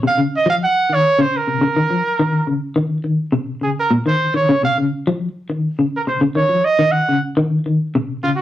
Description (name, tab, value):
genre	afrobeat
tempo	104 BPM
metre	4/4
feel	straight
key	Eb dorian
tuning	A4 = 440 Hz
part	semi-hollow electric guitar	arpeggios	0.0-8.4 s	Bb2 to F3	-18 LUFS	left 2 dB	tremolo
part	clear trumpet	melody	0.1-8.4 s	F4 to Gb5	-17 LUFS	right 3 dB	none
room	wet studio reverb, RT60 0.6 s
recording	rough rehearsal-room recording, warm saturation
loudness	-15 LUFS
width	side -13 dB against mid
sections	0.0-8.4 A section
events	none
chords	0.0 Eb7sus2